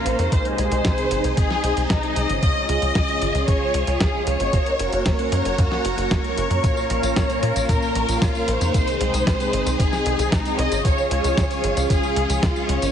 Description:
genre	italo disco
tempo	114 BPM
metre	4/4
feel	straight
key	unclear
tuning	A4 = 436 Hz
part	dark symphonic violin section	melody	0.0-12.9 s	Eb4 to Eb5	-24 LUFS	left 1 dB	digital delay
part	string machine, full ensemble	sustained chords	0.0-12.9 s	Bb3 to F5	-26 LUFS	left 1 dB	phaser, ensemble chorus
part	mellow synth brass	stabs	0.0-12.9 s	Bb2 to Eb5	-28 LUFS	right 3 dB	chorus, cassette tape
part	tight sequencer bass	bass	0.1-12.9 s	Gb1 to Bb2	-24 LUFS	equal	tube saturation
part	dusty soul sampler-style drum kit	drums	0.1-12.9 s	hi-hat, snare drum, tambourine	-28 LUFS	equal	none
part	electronic kick drum	drums	0.3-12.5 s	none	-22 LUFS	equal	none
room	light reverb, digital ambience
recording	heavily compressed radio sound, nothing above 10.9 kHz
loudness	-18 LUFS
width	side -8 dB against mid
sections	0.0-12.9 A section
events	none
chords	0.3 Ab; 2.4 Db; 4.5 Gb; 6.6 Bbm; 8.7 Ab; 10.8 Db

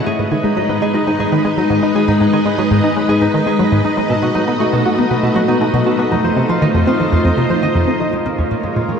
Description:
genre	ambient, sequencer-driven space music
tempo	119 BPM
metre	4/4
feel	straight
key	unclear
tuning	A4 = 440 Hz
part	string machine, full ensemble	sustained chords	0.0-9.0 s	G#3 to D#5	-17 LUFS	left 1 dB	ensemble chorus
part	concert harp	arpeggios	0.0-9.0 s	Ab3 to E5	-20 LUFS	right 1 dB	auto-pan, analog delay
part	bubbling stepped-filter texture	texture	0.0-8.1 s	D#5	-26 LUFS	left 1 dB	chorus, built-in reverb
part	tight sequenced synth	riff	0.1-8.9 s	F2 to F#4	-17 LUFS	equal	chorus, analog delay
room	wet huge ambient reverb, RT60 8.1 s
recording	in a vast, echoing space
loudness	-13 LUFS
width	side -6 dB against mid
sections	0.0-8.1 A section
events	none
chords	0.1 G#m; 4.1 B7; 6.1 F7; 8.1 Bbm7

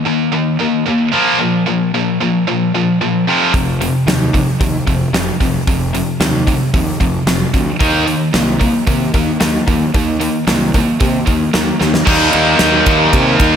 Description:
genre	hard rock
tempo	112 BPM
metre	4/4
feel	straight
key	unclear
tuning	A4 = 442 Hz
part	overdriven electric guitar	riff	0.0-13.6 s	F2 to Eb4	-17 LUFS	left 8 dB	slapback echo
part	tight distorted guitar	riff	0.0-13.6 s	F2 to Eb4	-17 LUFS	right 8 dB	distortion, slapback echo
part	fuzz fingered electric bass	bass	3.5-13.6 s	F1 to C3	-19 LUFS	equal	overdrive
part	gated 80s drum kit	drums	3.5-13.5 s	crash cymbal, hi-hat, kick drum, ride cymbal, snare drum	-16 LUFS	equal	none
part	biting overdriven guitar	riff	12.1-13.6 s	Eb3 to Eb4	-16 LUFS	equal	slapback echo
room	moderate scoring stage reverb, RT60 1.9 s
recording	big arena sound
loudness	-12 LUFS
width	side -8 dB against mid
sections	0.0-12.1 A section; 12.1-13.6 B section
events	drum fill 11.8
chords	0.0 Eb5; 1.1 Bb5; 3.3 F5; 7.8 Eb5; 12.1 Eb

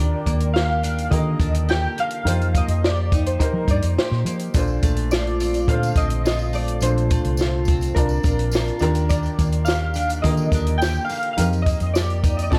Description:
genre	indie pop, bedroom pop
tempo	105 BPM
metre	4/4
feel	straight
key	Bb major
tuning	A4 = 441 Hz
part	soft electric-piano-like synth keys	melody	0.0-12.6 s	Bb4 to G5	-29 LUFS	equal	ensemble chorus
part	picked steel-string acoustic guitar	accompaniment	0.0-12.6 s	Bb2 to G4	-30 LUFS	equal	subtle chorus, vibrato effect
part	warm upright piano	accompaniment	0.0-12.6 s	D3 to A5	-32 LUFS	equal	cassette tape
part	vintage muted fingered electric bass	bass	0.0-12.6 s	Bb1 to F3	-24 LUFS	equal	none
part	compact cocktail drum kit	drums	0.3-12.6 s	hi-hat, kick drum, snare drum	-25 LUFS	equal	none
part	tambourine	percussion	4.5-12.5 s	none	-42 LUFS	equal	none
room	small room ambience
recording	none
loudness	-21 LUFS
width	mono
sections	0.0-12.6 A section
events	none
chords	0.0 Ebmaj7; 2.3 F9sus4; 4.5 Bbmaj9; 8.8 Ebmaj7; 11.4 F9sus4

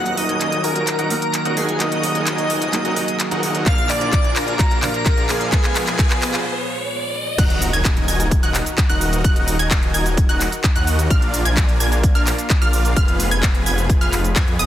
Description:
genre	EDM, festival progressive house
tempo	129 BPM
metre	4/4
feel	straight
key	Eb harmonic minor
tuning	A4 = 440 Hz
part	airy dreamy lead	melody	0.0-6.2 s	Ab4 to Gb5	-23 LUFS	left 1 dB	chorus, digital delay
part	felt-muted upright piano	accompaniment	0.0-7.4 s	Bb2 to Cb5	-27 LUFS	right 3 dB	sidechain pumping, digital delay
part	lush unison pad	sustained chords	0.0-14.7 s	Eb3 to Cb5	-29 LUFS	equal	chorus, sidechain pumping
part	dense compressed supersaw	riff	0.0-14.7 s	Cb4 to Ab5	-25 LUFS	right 1 dB	sidechain pumping, low-pass filter, digital delay
part	wide detuned saw bass	bass	0.0-14.7 s	Eb1 to F2	-23 LUFS	equal	chorus, sidechain pumping, high-pass filter
part	riser and impact	sound effects	3.2-9.2 s	none	-29 LUFS	equal	none
part	house drum kit	drums	0.1-14.7 s	crash cymbal, handclaps, hi-hat, shaker, toms	-24 LUFS	equal	high-pass filter on hats, soft clipping on snare, high-pass filter on snare, high-pass filter on toms, high-pass filter on cymbals, high-pass filter on perc
part	electronic kick drum	drums	3.7-14.5 s	none	-18 LUFS	equal	none
part	wide unison pluck	arpeggios	7.4-14.7 s	Eb6 to Ab6	-25 LUFS	right 1 dB	sidechain pumping, digital delay
room	light reverb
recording	dense, heavily limited modern master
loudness	-16 LUFS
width	side -12 dB against mid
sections	0.0-7.4 A section; 7.4-14.7 B section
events	build-up 0.0-7.4; drum fill 0.0-6.5, 7.2; riser 3.2-7.4; break 6.5-7.4; drop 7.4-14.7; impact 7.4-9.2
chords	0.0 Ebm; 3.7 Bb; 5.5 Fdim; 7.4 Ebm; 11.1 Bb; 13.0 Fdim

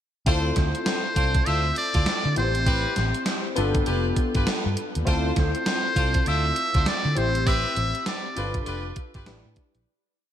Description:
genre	R&B, new jack swing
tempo	100 BPM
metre	4/4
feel	swing 61% on 16ths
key	D dorian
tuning	A4 = 441 Hz
part	warm analog keys	accompaniment	0.3-9.9 s	B3 to C5	-29 LUFS	left 3 dB	chorus
part	clear horn section	stabs	0.3-9.3 s	C4 to C5	-32 LUFS	equal	none
part	vintage muted fingered electric bass	bass	0.3-9.8 s	F1 to D3	-26 LUFS	equal	none
part	gated 80s digital drum machine	drums	0.3-9.9 s	hi-hat, kick drum, snare drum	-26 LUFS	equal	gated reverb, gated reverb snare
part	trumpet with metal mute	melody	0.6-8.6 s	C5 to E5	-27 LUFS	equal	none
room	moderate lush hall reverb, RT60 2.6 s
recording	bright 1980s-style digital production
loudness	-21 LUFS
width	side -10 dB against mid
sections	0.3-9.9 verse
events	fade-out 7.5-9.9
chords	0.3 Dm7; 2.4 Am9; 3.6 G7; 5.1 Dm7; 7.2 Am9; 8.4 G7; 9.3 A7sus4

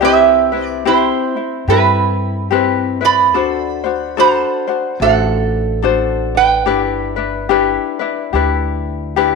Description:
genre	Hawaiian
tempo	72 BPM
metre	4/4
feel	swing 61% on 8ths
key	G major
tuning	A4 = 440 Hz
part	metal-body resonator slide guitar	melody	0.0-9.1 s	E4 to B5	-14 LUFS	right 10 dB	none
part	ukulele	accompaniment	0.0-9.4 s	C4 to C5	-16 LUFS	left 10 dB	none
part	upright bass	bass	0.0-9.4 s	G1 to G2	-21 LUFS	equal	none
room	wet echo chamber reverb, RT60 1.6 s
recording	1960s-style stereo with parts hard left and right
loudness	-13 LUFS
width	side -4 dB against mid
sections	0.0-9.4 A section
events	none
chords	0.0 Cmaj7; 3.3 D7; 6.7 G6

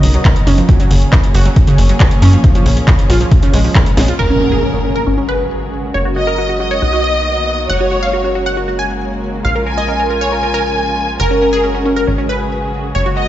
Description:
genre	uplifting trance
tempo	137 BPM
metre	4/4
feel	straight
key	F# major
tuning	A4 = 441 Hz
part	muted studio string section	sustained chords	0.0-13.3 s	C#3 to D#5	-23 LUFS	left 1 dB	sidechain pumping, low-pass filter
part	tight sequencer bass	bass	0.0-13.3 s	F#1 to F#2	-16 LUFS	equal	sidechain pumping
part	techno drum kit	drums	0.0-4.3 s	crash cymbal, handclaps, hi-hat, snare drum	-22 LUFS	equal	low-pass filter on hats, low-pass filter on snare, low-pass filter on cymbals, low-pass filter on room
part	wide unison pluck	arpeggios	0.1-4.2 s	C#3 to F#4	-18 LUFS	right 3 dB	sidechain pumping, tape echo
part	electronic kick drum	drums	0.2-3.8 s	none	-11 LUFS	equal	none
part	wide unison pluck	melody	4.2-13.3 s	C#4 to G#5	-18 LUFS	equal	phaser, sidechain pumping, ping-pong delay
part	warm symphonic violin section	second line	4.2-13.3 s	A#4 to G#5	-18 LUFS	equal	tape echo
part	impact	sound effects	4.2-5.9 s	none	-20 LUFS	equal	none
room	light reverb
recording	played on a big sound system in a bare room, stone room reverb, nothing above 7.7 kHz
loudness	-11 LUFS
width	side -13 dB against mid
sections	0.0-4.2 A section; 4.2-13.3 B section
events	drum fill 4.0; band accent 4.0; impact 4.2-5.9; filter sweep on synth pluck 4.2-13.3; filter sweep on string section 4.2-13.3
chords	0.0 Bmaj7; 0.7 F#add9; 2.4 A#m7; 4.2 F#add9; 5.1 C#sus4/G#; 5.9 F#add9; 6.8 Bmaj7; 7.7 F#add9; 9.4 A#m7; 11.2 F#add9; 12.1 C#sus4/G#

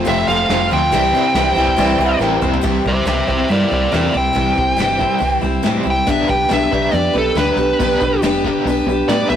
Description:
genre	folk rock and heartland rock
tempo	140 BPM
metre	4/4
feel	straight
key	unclear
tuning	A4 = 440 Hz
part	picked steel-string acoustic guitar	accompaniment	0.0-9.4 s	F2 to B4	-19 LUFS	left 2 dB	none
part	tonewheel organ	sustained chords	0.0-9.4 s	D4 to C5	-31 LUFS	right 1 dB	none
part	crunchy overdriven guitar	riff	0.0-9.4 s	F2 to G4	-22 LUFS	right 1 dB	tremolo
part	fingered electric bass	bass	0.0-9.4 s	F1 to C3	-22 LUFS	equal	none
part	smooth overdriven lead guitar	melody	0.1-9.4 s	A4 to G5	-18 LUFS	right 1 dB	analog delay
part	soft brush drum kit	drums	0.1-9.2 s	crash cymbal, hi-hat, kick drum, snare drum, toms	-25 LUFS	right 1 dB	none
part	dark upright piano	second line	1.4-2.4 s	Bb4 to G5	-23 LUFS	right 2 dB	none
room	light reverb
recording	rough rehearsal-room recording, warm saturation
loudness	-13 LUFS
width	side -9 dB against mid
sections	0.0-2.6 A section; 2.6-9.4 B section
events	drum fill 2.2-2.6; lead electric guitar solo 2.6-9.4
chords	0.0 F; 0.9 C; 6.1 G/B

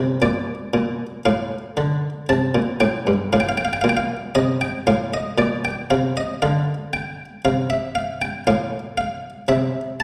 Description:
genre	classical, baroque-style two-part invention for harpsichord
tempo	58 BPM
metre	4/4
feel	straight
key	unclear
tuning	A4 = 440 Hz
part	buff-stop harpsichord	solo	0.0-10.0 s	G2 to A5	-22 LUFS	equal	none
room	wet recital hall reverb, RT60 1.5 s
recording	heard from further back in the room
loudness	-22 LUFS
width	mono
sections	0.0-10.0 A section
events	none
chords	0.0 Bb; 1.3 F/A; 3.3 F7/A; 5.4 Bb; 7.4 F/C; 9.5 C

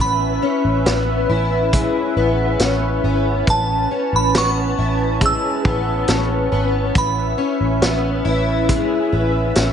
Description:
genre	dream pop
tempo	69 BPM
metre	4/4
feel	straight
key	A major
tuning	A4 = 440 Hz
part	glassy synth bell	melody	0.0-8.7 s	A5 to E6	-23 LUFS	right 2 dB	chorus, tape echo
part	lush unison pad	sustained chords	0.0-9.7 s	C#4 to A5	-22 LUFS	right 2 dB	chorus
part	fingerpicked plugged-in twelve-string acoustic guitar	arpeggios	0.0-9.7 s	G#3 to E4	-22 LUFS	left 5 dB	ensemble chorus, tape echo
part	vintage muted picked electric bass	bass	0.0-9.7 s	G#1 to A1	-21 LUFS	equal	none
part	vintage drum kit	drums	0.9-9.7 s	hi-hat, kick drum, snare drum	-20 LUFS	equal	none
room	light reverb, small room ambience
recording	nothing above 10.9 kHz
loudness	-16 LUFS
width	side -8 dB against mid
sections	0.0-9.7 A section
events	none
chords	0.0 Amaj9

